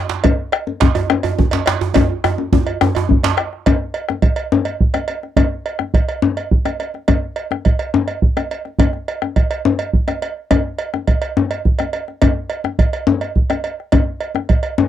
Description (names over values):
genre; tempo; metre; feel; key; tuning
west african traditional, West African drum ensemble; 140 BPM (dotted quarters); 12/8; straight; none; none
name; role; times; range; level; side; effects
djembe; percussion; 0.1-3.4 s; none; -19 LUFS; right 5 dB; none
bombo; percussion; 0.2-14.6 s; none; -16 LUFS; right 1 dB; none
cowbell; percussion; 0.2-14.8 s; none; -23 LUFS; right 5 dB; none
djembe; percussion; 0.2-14.9 s; none; -18 LUFS; left 6 dB; none
room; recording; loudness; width
light reverb; dry, close 1970s-style studio recording; -15 LUFS; side -11 dB against mid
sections
0.0-3.7 A section; 3.7-14.9 B section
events
drum fill 2.0-3.7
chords
none